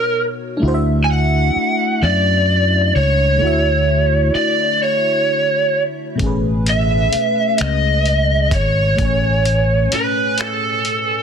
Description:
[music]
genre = slow six-eight R&B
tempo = 43 BPM (dotted quarters)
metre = 6/8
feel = straight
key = unclear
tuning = A4 = 438 Hz
[part]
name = lead guitar through a small cranked amp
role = melody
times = 0.0-11.2 s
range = A4 to G#5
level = -16 LUFS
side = right 1 dB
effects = overdrive
[part]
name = FM electric piano with soft pad layer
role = accompaniment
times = 0.0-11.2 s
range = A2 to G#5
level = -22 LUFS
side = left 1 dB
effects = chorus
[part]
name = fingered electric bass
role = bass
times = 0.6-10.0 s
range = G#1 to F#2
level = -17 LUFS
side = equal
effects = none
[part]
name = dusty soul sampler-style drum kit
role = drums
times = 6.2-11.1 s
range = finger snaps, hi-hat, kick drum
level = -22 LUFS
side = left 1 dB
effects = soft clipping on snare
[sound]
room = little or no reverb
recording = dense, heavily limited modern master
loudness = -14 LUFS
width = side -7 dB against mid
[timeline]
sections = 0.0-11.2 A section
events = none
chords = 0.0 Bmaj9; 0.6 Dmaj9; 6.2 Amaj9

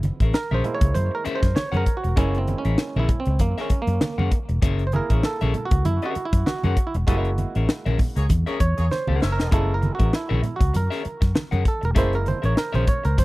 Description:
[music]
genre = funk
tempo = 98 BPM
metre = 4/4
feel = swing 56% on 16ths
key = F# mixolydian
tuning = A4 = 440 Hz
[part]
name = clean electric guitar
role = accompaniment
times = 0.0-13.2 s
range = C#4 to F#5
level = -30 LUFS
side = left 5 dB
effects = none
[part]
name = vintage muted fingered electric bass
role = bass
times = 0.0-13.2 s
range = E1 to F#2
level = -22 LUFS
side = equal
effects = none
[part]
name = crisp fusion drum kit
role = drums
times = 0.0-13.2 s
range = hi-hat, kick drum, snare drum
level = -21 LUFS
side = equal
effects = none
[part]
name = congas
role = percussion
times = 0.0-13.2 s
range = none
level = -30 LUFS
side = right 2 dB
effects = none
[part]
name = clav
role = stabs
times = 0.3-13.2 s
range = G#3 to C#5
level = -27 LUFS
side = right 3 dB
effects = tape echo
[part]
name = clear horn section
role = second line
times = 8.2-9.6 s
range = A#3 to E5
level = -32 LUFS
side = equal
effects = none
[sound]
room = little or no reverb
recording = dry, close 1970s-style studio recording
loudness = -20 LUFS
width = side -19 dB against mid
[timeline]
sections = 0.0-13.2 A section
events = clav solo 0.0-13.2; band accent 7.1-9.5; drum fill 8.9-9.5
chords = 0.0 F#9

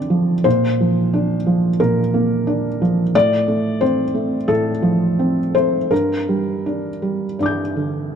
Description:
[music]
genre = neoclassical minimalist piano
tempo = 81-90 BPM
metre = 4/4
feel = rubato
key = unclear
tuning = A4 = 440 Hz
[part]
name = felt-muted upright piano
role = solo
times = 0.0-8.2 s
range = G2 to G6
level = -16 LUFS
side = equal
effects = none
[sound]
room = light reverb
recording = dark, warm production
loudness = -16 LUFS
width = side -7 dB against mid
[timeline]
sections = 0.0-8.2 A section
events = none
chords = 0.5 Bb; 3.1 F/A; 5.9 Gm

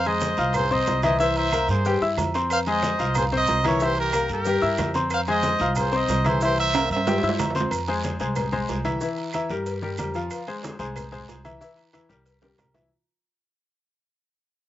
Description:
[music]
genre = latin, salsa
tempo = 184 BPM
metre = 4/4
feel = straight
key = F minor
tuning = A4 = 440 Hz
[part]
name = bright trumpet section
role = melody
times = 0.0-7.5 s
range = G4 to F5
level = -24 LUFS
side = right 1 dB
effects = slapback echo
[part]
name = upright bass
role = bass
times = 0.0-12.9 s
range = C2 to G2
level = -28 LUFS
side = right 1 dB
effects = none
[part]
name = maracas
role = percussion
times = 0.0-12.9 s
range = none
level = -43 LUFS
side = right 5 dB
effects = none
[part]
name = bright baby grand piano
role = accompaniment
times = 0.1-12.9 s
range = E3 to F6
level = -26 LUFS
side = left 3 dB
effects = none
[part]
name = agogo bells and timbales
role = percussion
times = 0.1-12.9 s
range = none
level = -30 LUFS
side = right 4 dB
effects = none
[part]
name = congas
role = percussion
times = 0.1-12.8 s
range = none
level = -34 LUFS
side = right 1 dB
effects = slapback echo
[part]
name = cowbell and bongos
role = percussion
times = 0.2-12.9 s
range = none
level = -36 LUFS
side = left 6 dB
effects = none
[part]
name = guiro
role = percussion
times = 0.2-12.9 s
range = none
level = -40 LUFS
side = right 6 dB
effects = none
[part]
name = claves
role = percussion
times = 0.5-12.7 s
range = none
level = -38 LUFS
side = right 7 dB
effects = none
[sound]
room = little or no reverb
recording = recorded outdoors, with no room sound, nothing above 7.7 kHz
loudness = -21 LUFS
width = side -13 dB against mid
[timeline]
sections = 0.0-7.7 A section; 7.7-12.9 B section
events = drum fill 6.7-7.7, 12.1-12.9; fade-out 7.7-12.9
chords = 0.0 Fm7; 1.2 C7; 2.5 Fm7; 3.8 C7; 5.1 Fm7; 6.4 C7; 7.7 Fm; 9.0 Edim; 10.3 Fm; 11.6 C7

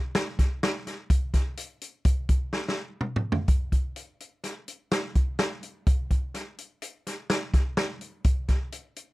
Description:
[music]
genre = progressive instrumental, progressive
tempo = 126 BPM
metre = 5/4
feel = straight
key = none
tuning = none
[part]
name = vintage drum kit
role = drums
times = 0.1-9.1 s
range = hi-hat, kick drum, snare drum, toms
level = -24 LUFS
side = equal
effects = none
[sound]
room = little or no reverb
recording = dry, close 1970s-style studio recording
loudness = -25 LUFS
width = side -20 dB against mid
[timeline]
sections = 0.0-3.5 A section; 3.5-9.1 B section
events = drum fill 2.5-3.5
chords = none

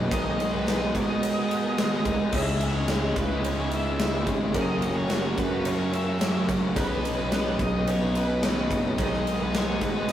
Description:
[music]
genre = classic rock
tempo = 108 BPM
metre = 4/4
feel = straight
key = C# dorian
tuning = A4 = 440 Hz
[part]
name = picked plugged-in twelve-string acoustic guitar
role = accompaniment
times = 0.0-10.1 s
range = B2 to B4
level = -34 LUFS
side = right 2 dB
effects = none
[part]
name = bright tonewheel organ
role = sustained chords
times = 0.0-10.1 s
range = B3 to A#5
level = -37 LUFS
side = equal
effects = none
[part]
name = distorted electric guitar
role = riff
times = 0.0-10.1 s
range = C#2 to B3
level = -30 LUFS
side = right 3 dB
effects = distortion
[part]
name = overdriven semi-hollow guitar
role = riff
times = 0.0-10.1 s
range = C#2 to B4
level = -31 LUFS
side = left 3 dB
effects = none
[part]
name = fuzz fingered electric bass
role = bass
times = 0.0-10.1 s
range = F#1 to B2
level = -31 LUFS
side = equal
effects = overdrive
[part]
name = octave-fuzz lead guitar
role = melody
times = 0.1-10.1 s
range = B4 to E5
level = -35 LUFS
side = left 1 dB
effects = distortion
[part]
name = huge arena drum kit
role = drums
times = 0.1-10.1 s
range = crash cymbal, kick drum, ride cymbal, snare drum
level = -28 LUFS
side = equal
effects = none
[part]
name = cowbell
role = percussion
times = 0.1-9.7 s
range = none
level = -41 LUFS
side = right 5 dB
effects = none
[sound]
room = moderate stone room reverb, RT60 1.4 s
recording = rough rehearsal-room recording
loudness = -23 LUFS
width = side -11 dB against mid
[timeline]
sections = 0.0-10.1 A section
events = none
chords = 0.1 G#madd9/B; 2.3 C#m; 4.5 F#; 6.8 Badd9; 9.0 G#madd9/B

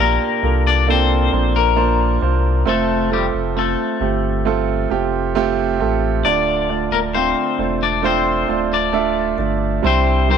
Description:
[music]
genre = pop ballad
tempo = 67 BPM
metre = 4/4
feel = straight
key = F major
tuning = A4 = 440 Hz
[part]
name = twangy electric guitar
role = melody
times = 0.0-10.4 s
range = G3 to D5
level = -20 LUFS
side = left 12 dB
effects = spring reverb
[part]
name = warm concert grand piano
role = accompaniment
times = 0.0-10.4 s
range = Bb2 to F5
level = -19 LUFS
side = right 10 dB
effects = none
[part]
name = sub bass with octave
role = bass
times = 0.0-10.4 s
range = D1 to C2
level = -21 LUFS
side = left 2 dB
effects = none
[sound]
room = light reverb, studio ambience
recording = 1960s-style stereo with parts hard left and right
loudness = -15 LUFS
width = side -7 dB against mid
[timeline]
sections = 0.0-10.4 A section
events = none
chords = 0.0 Bbadd9; 2.7 F; 6.3 Dm; 9.8 Cadd9

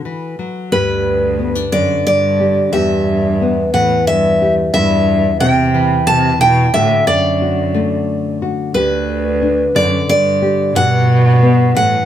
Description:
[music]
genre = acoustic folk duo or small band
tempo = 90 BPM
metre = 3/4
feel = straight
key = G major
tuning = A4 = 437 Hz
[part]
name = nylon-string guitar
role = accompaniment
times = 0.0-12.1 s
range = E2 to G4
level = -18 LUFS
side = left 3 dB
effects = none
[part]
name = picked steel-string acoustic guitar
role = melody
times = 0.7-12.1 s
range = B4 to A5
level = -15 LUFS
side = equal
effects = none
[part]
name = rich cello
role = second line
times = 0.7-12.1 s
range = D2 to C3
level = -17 LUFS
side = right 2 dB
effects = none
[sound]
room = wet studio reverb, RT60 0.6 s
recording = band playing live in one room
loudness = -12 LUFS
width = side -10 dB against mid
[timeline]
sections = 0.7-12.1 A section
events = none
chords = 0.0 N.C.; 0.7 G; 2.7 Em; 4.7 C/E; 6.7 D; 8.7 G; 10.7 Emadd9/G

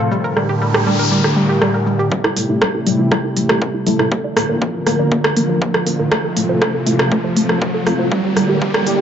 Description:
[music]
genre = melodic techno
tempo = 120 BPM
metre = 4/4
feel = straight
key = A phrygian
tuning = A4 = 442 Hz
[part]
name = warm analog pad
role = sustained chords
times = 0.0-9.0 s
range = A2 to Bb4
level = -19 LUFS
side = equal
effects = chorus, sidechain pumping
[part]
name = analog pluck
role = arpeggios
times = 0.0-9.0 s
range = G3 to D5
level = -20 LUFS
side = equal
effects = chorus, sidechain pumping, tape echo
[part]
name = filtered dub chord stab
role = stabs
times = 0.0-9.0 s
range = A2 to Bb4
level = -23 LUFS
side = left 2 dB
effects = phaser, lush chorus, sidechain pumping, tape echo
[part]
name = techno drum kit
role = drums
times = 0.1-9.0 s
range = hi-hat, rim click, shaker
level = -19 LUFS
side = equal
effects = low-pass filter on snare, sidechain pumping on perc, low-pass filter on perc, sidechain pumping on hats, low-pass filter on hats, low-pass filter on room
[part]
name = noise sweep and riser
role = sound effects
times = 0.3-9.0 s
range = none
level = -25 LUFS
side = right 1 dB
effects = none
[part]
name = swelling detuned saw bass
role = bass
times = 2.1-8.9 s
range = A1 to A2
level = -26 LUFS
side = equal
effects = sidechain pumping, high-pass filter
[part]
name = electronic kick drum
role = drums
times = 2.1-8.7 s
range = none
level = -23 LUFS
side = equal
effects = high-pass filter on kick, high-pass filter on room
[sound]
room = wet lush hall reverb, RT60 1.6 s, digital ambience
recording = dark, warm production, high-pass filter, nothing above 7.6 kHz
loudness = -14 LUFS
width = side -8 dB against mid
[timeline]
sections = 0.0-2.1 A section; 2.1-9.0 B section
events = noise sweep 0.3-2.1; build-up 2.1-9.0; riser 2.1-9.0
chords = 0.1 Gm/A; 2.1 Am7; 4.1 Bb/A; 6.1 F/A; 8.1 Gm/A

